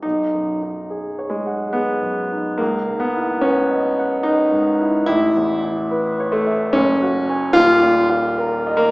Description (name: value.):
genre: classical, impressionist solo piano.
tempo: 72 BPM.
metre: 3/4.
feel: rubato.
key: B major.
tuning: A4 = 436 Hz.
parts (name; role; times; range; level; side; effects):
warm grand piano; solo; 0.0-8.9 s; D#1 to G#5; -16 LUFS; equal; none.
room: wet concert hall reverb, RT60 2.1 s.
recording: heard from further back in the room, small speaker sound.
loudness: -16 LUFS.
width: side -23 dB against mid.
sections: 0.0-8.9 A section.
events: none.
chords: 0.0 B69; 2.6 C#m11; 5.1 Aadd9; 6.8 F#sus2; 7.6 D#sus2.